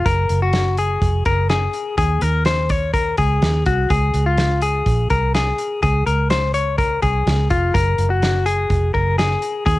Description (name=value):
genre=jangly indie pop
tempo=125 BPM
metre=4/4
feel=straight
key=unclear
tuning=A4 = 440 Hz
part: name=direct-recorded clean electric guitar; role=arpeggios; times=0.0-9.8 s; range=F4 to Db5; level=-20 LUFS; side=left 4 dB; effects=none
part: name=vintage muted fingered electric bass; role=bass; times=0.0-9.8 s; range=F1 to Eb2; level=-19 LUFS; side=right 1 dB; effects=none
part: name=loose indie drum kit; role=drums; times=0.1-9.8 s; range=hi-hat, kick drum, snare drum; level=-23 LUFS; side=right 1 dB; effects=cassette tape
room=light reverb, studio ambience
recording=home recording on cassette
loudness=-16 LUFS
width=side -18 dB against mid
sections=0.0-9.8 A section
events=none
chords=0.1 Gb; 2.0 Ebm; 3.9 Db; 7.7 Gb